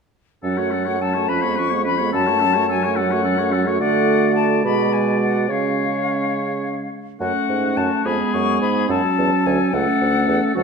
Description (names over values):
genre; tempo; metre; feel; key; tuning
quick classical-period movement for wind quintet; 71 BPM (dotted quarters); 6/8; straight; F# minor; A4 = 440 Hz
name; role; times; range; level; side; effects
concert flute; melody; 0.4-10.6 s; E#5 to C#6; -23 LUFS; left 10 dB; none
clear oboe; second line; 0.4-10.6 s; F#4 to D5; -26 LUFS; left 4 dB; none
dark French horn; accompaniment; 0.4-10.6 s; E#3 to A3; -24 LUFS; left 1 dB; none
mellow clarinet; accompaniment; 0.4-10.6 s; Cb4 to F#4; -23 LUFS; right 7 dB; none
mellow bassoon; bass; 0.4-10.6 s; C#2 to D3; -24 LUFS; right 3 dB; none
room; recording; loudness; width
wet recital hall reverb, RT60 1.6 s; none; -17 LUFS; side -5 dB against mid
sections
0.4-10.6 A section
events
none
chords
0.4 F#m; 1.3 C#7/E#; 2.1 F#m; 3.8 D; 4.6 G#m7b5/B; 5.5 C#; 7.2 F#m; 8.1 Fdim; 8.9 F#m